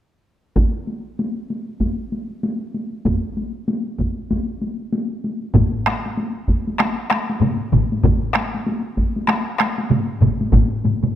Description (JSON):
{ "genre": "japanese traditional, taiko drum ensemble", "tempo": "96 BPM", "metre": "4/4", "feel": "swing 60% on 16ths", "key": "none", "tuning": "none", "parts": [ { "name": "solo taiko drums", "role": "percussion", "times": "0.6-11.1 s", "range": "none", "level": "-24 LUFS", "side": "left 2 dB", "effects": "none" }, { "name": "taiko ensemble", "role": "percussion", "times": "0.6-10.7 s", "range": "none", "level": "-20 LUFS", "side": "right 1 dB", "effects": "none" }, { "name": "taiko ensemble", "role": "percussion", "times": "5.5-11.2 s", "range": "none", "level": "-22 LUFS", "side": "left 4 dB", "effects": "none" }, { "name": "taiko ensemble", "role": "percussion", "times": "5.6-11.2 s", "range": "none", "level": "-22 LUFS", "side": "right 5 dB", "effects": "none" } ], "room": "moderate scoring stage reverb, RT60 1.7 s", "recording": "close, detailed microphones", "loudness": "-19 LUFS", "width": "side -11 dB against mid", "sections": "0.6-5.5 A section; 5.5-11.2 B section", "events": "none", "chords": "none" }